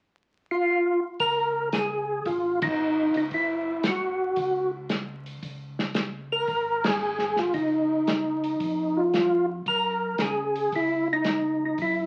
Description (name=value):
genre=soul jazz organ trio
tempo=113 BPM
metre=4/4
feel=swing 69% on 8ths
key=unclear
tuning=A4 = 441 Hz
part: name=percussive tonewheel organ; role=melody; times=0.5-12.1 s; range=Eb4 to Bb4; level=-26 LUFS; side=equal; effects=slow rotary speaker, chorus vibrato
part: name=mellow tonewheel organ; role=bass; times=1.2-12.1 s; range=Fb1 to Db3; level=-42 LUFS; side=equal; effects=chorus vibrato, slow rotary speaker
part: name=warm soul drum kit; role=drums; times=1.2-11.9 s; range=hi-hat, kick drum, ride cymbal, snare drum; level=-34 LUFS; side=equal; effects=none
room=wet large studio reverb, RT60 0.8 s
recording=very old 78 rpm record, vinyl crackle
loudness=-26 LUFS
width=mono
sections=0.0-1.2 A section; 1.2-12.1 B section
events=band accent 2.5, 6.7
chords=0.0 N.C.; 1.2 Dbsus2; 3.3 Gb5; 5.4 Db69; 9.7 Gb13